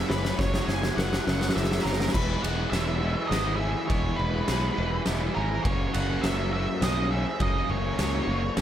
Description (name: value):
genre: post-rock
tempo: 103 BPM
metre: 3/4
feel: straight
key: E lydian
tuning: A4 = 440 Hz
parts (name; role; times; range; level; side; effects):
- octave-fuzz lead guitar; melody; 0.0-8.5 s; A#4 to G#5; -32 LUFS; right 1 dB; distortion, digital delay
- electric guitar through a small old amp; arpeggios; 0.0-8.6 s; E2 to G#4; -37 LUFS; left 3 dB; digital delay
- felt-muted upright piano; arpeggios; 0.0-2.1 s; G#4 to C#5; -38 LUFS; right 2 dB; none
- distorted electric guitar; riff; 0.0-8.6 s; F#2 to E4; -31 LUFS; right 1 dB; distortion
- modern bright fingered electric bass; bass; 0.1-8.6 s; E1 to C#2; -29 LUFS; equal; none
- oversized low-tuned drum kit; drums; 0.1-8.6 s; crash cymbal, kick drum, ride cymbal, snare drum; -28 LUFS; equal; none
room: light reverb, small room ambience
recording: none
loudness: -24 LUFS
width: side -10 dB against mid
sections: 0.0-2.1 A section; 2.1-8.6 B section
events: build-up 0.0-2.1; drum fill 0.0-2.1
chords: 0.0 F#7; 2.1 Eadd9; 5.7 F#add9